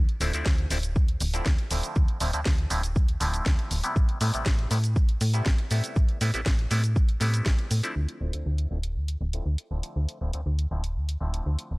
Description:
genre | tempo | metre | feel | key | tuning
filtered disco house | 120 BPM | 4/4 | straight | unclear | A4 = 440 Hz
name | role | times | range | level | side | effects
slap-like FM bass | bass | 0.0-11.8 s | D1 to A2 | -27 LUFS | equal | tube saturation, sidechain pumping, low-pass filter
house drum kit | drums | 0.1-11.7 s | hi-hat, shaker, snare drum | -33 LUFS | equal | sidechain pumping on perc, sidechain pumping on hats
bright clav | accompaniment | 0.2-11.8 s | C3 to E4 | -33 LUFS | equal | phaser, vintage 12-bit sampler grit, sidechain pumping, low-pass filter
electronic kick drum | drums | 0.5-7.6 s | none | -23 LUFS | equal | none
room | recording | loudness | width
little or no reverb | dry, gritty hardware recording, cassette tape | -24 LUFS | side -23 dB against mid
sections
0.0-8.0 A section; 8.0-11.8 B section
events
filter sweep 8.0-11.8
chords
0.0 Dm9; 4.0 Am9; 8.0 Dm9

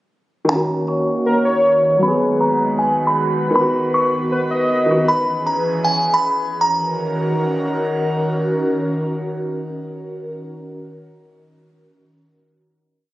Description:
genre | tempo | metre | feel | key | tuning
hip hop, trap | 157 BPM | 4/4 | half-time | Eb phrygian | A4 = 445 Hz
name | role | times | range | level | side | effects
warm concert grand piano | accompaniment | 0.4-5.1 s | Eb3 to Ab4 | -20 LUFS | equal | low-pass filter
delicate synth tine bell | melody | 0.5-7.7 s | Ab5 to Db6 | -19 LUFS | equal | chorus, phaser, low-pass filter
airy breathy pad | sustained chords | 0.8-10.4 s | Eb3 to Db5 | -21 LUFS | equal | chorus, phaser, low-pass filter
warm velvety synth lead | second line | 1.3-2.0, 4.3-5.0 s | Bb4 to D#5 | -18 LUFS | equal | chorus, tape echo
room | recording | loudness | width
light reverb, digital ambience | recorded on a phone in the room, studio reverb, compression | -16 LUFS | side -16 dB against mid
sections
0.5-6.6 breakdown; 6.6-9.7 final chord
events
filter sweep 0.5-6.6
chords
0.5 Ebm7; 2.0 Abm7; 3.6 B; 5.1 E6; 6.6 Ebm7

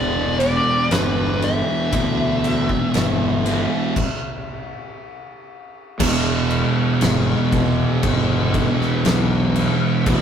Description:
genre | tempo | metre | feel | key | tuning
stoner and doom metal | 59 BPM | 4/4 | straight | E minor | A4 = 440 Hz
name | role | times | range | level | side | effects
fuzz lead guitar | melody | 0.0-5.0 s | B4 to E5 | -24 LUFS | left 1 dB | wah, distortion, digital delay
string machine, violins | sustained chords | 0.0-10.2 s | E3 to E4 | -33 LUFS | left 2 dB | none
thick fuzz guitar | riff | 0.0-10.2 s | E2 to E3 | -24 LUFS | left 6 dB | distortion
thick fuzz guitar | riff | 0.0-10.2 s | E2 to E3 | -24 LUFS | right 6 dB | distortion
fuzz fingered electric bass | bass | 0.0-10.2 s | E1 to D2 | -24 LUFS | equal | overdrive
oversized low-tuned drum kit | drums | 0.4-10.2 s | crash cymbal, kick drum, ride cymbal, snare drum | -24 LUFS | equal | none
fuzz guitar | riff | 6.0-10.2 s | E2 to E3 | -22 LUFS | right 3 dB | distortion
room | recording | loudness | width
light reverb | rough rehearsal-room recording | -17 LUFS | side -8 dB against mid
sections
0.0-6.0 A section; 6.0-10.2 B section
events
stop 4.0-6.0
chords
0.0 Em

